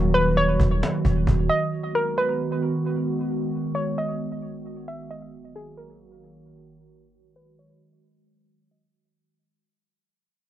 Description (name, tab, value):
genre	hip hop, atmospheric cloud-rap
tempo	133 BPM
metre	4/4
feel	half-time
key	unclear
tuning	A4 = 443 Hz
part	warbly tape-like pad	sustained chords	0.0-8.9 s	D#3 to F#4	-26 LUFS	right 2 dB	chorus, built-in reverb, low-pass filter, cassette tape
part	long sustained 808-style bass	bass	0.0-1.5 s	D#1	-22 LUFS	equal	none
part	hollow square pluck	melody	0.1-8.9 s	G#4 to E5	-25 LUFS	equal	chorus, low-pass filter, tape echo
part	cajon	drums	0.1-1.6 s	none	-28 LUFS	equal	none
room	moderate studio ambience, RT60 0.5 s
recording	home recording on cassette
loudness	-21 LUFS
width	side -12 dB against mid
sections	0.0-8.9 A section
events	fade-out 0.0-8.9; filter sweep 0.0-8.9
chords	0.0 D#m; 1.7 G#m7; 5.3 D#m